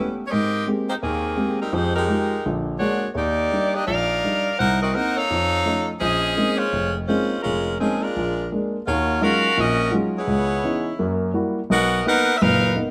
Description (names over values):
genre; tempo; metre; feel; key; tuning
jazz; 168 BPM; 4/4; swing 65% on 8ths; Bb minor; A4 = 440 Hz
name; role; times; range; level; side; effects
bright saxophone section; melody; 0.0-12.8 s; Eb3 to Gb5; -24 LUFS; equal; none
warm grand piano; accompaniment; 0.0-12.9 s; F1 to G4; -25 LUFS; equal; none
room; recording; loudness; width
moderate echo chamber reverb, RT60 1.8 s; none; -22 LUFS; mono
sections
0.0-8.9 A section; 8.9-12.9 B section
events
none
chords
0.3 Abmaj9; 1.7 Fm9; 2.4 Bb7alt; 3.2 Ebmaj7; 4.6 Cm7b5; 5.3 Faug7; 6.0 Bbm11; 8.1 Bb7; 8.9 Ebm11; 10.3 Dbm9; 11.0 Gb7b9; 11.7 Bmaj7